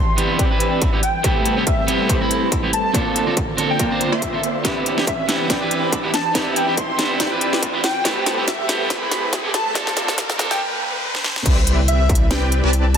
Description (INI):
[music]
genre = future bass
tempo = 141 BPM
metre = 4/4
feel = swing 55% on 16ths, half-time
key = C major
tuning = A4 = 442 Hz
[part]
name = airy dreamy lead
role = melody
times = 0.0-13.0 s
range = E5 to C6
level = -25 LUFS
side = equal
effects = chorus, sidechain pumping, tape echo
[part]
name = airy breathy pad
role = sustained chords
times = 0.0-13.0 s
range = C3 to B4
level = -30 LUFS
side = left 2 dB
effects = chorus, sidechain pumping
[part]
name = supersaw stab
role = riff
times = 0.0-13.0 s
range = A3 to C6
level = -25 LUFS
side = equal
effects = vintage 12-bit sampler grit, sidechain pumping, low-pass filter, tape echo
[part]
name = riser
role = sound effects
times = 1.1-11.5 s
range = none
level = -30 LUFS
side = equal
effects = none
[part]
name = electric guitar at the edge of break-up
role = accompaniment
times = 0.2-10.6 s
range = B3 to B5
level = -23 LUFS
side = right 3 dB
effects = sidechain pumping, tape echo
[part]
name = trap drum kit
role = drums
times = 0.2-13.0 s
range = crash cymbal, hi-hat, snare drum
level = -23 LUFS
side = equal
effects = studio reverb
[part]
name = electronic kick drum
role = drums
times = 0.4-12.2 s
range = none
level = -22 LUFS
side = equal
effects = distortion, studio reverb
[part]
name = saturated sub bass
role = bass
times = 11.5-13.0 s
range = C2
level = -18 LUFS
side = equal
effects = sidechain pumping
[sound]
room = light reverb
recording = dense, heavily limited modern master, high-pass filter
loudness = -16 LUFS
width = side -8 dB against mid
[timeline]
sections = 0.0-11.5 A section; 11.5-13.0 B section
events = build-up 0.0-11.5; filter sweep on supersaw synth 0.0-11.5; filter sweep 0.0-11.5; riser 1.1-11.5; drum fill 4.6-10.6, 11.1-11.5; drop 11.5-13.0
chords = 0.0 Cmaj7; 1.0 Am7; 2.9 Bbmaj7; 4.6 Cmaj7; 7.8 Am7; 9.8 Bbmaj7; 11.5 Cmaj7